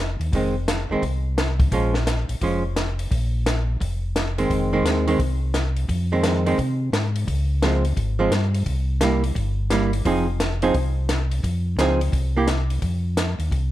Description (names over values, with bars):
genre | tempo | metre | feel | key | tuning
soul jazz organ trio | 173 BPM | 4/4 | swing 64% on 8ths | F minor | A4 = 440 Hz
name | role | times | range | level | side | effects
mellow tonewheel organ | bass | 0.0-13.7 s | F1 to C3 | -23 LUFS | equal | slow rotary speaker
compact cocktail drum kit | drums | 0.2-13.6 s | hi-hat, kick drum, snare drum | -25 LUFS | left 1 dB | none
archtop guitar, miked and amplified | accompaniment | 0.3-12.5 s | Eb3 to Ab4 | -23 LUFS | right 2 dB | none
room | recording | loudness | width
light reverb | none | -20 LUFS | side -14 dB against mid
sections
0.0-12.8 A section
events
none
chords
0.3 Fm7; 1.7 Bbm7; 4.5 Fm7; 7.3 Dbmaj7; 8.7 C7; 10.1 Fm7; 12.1 C7; 12.8 F5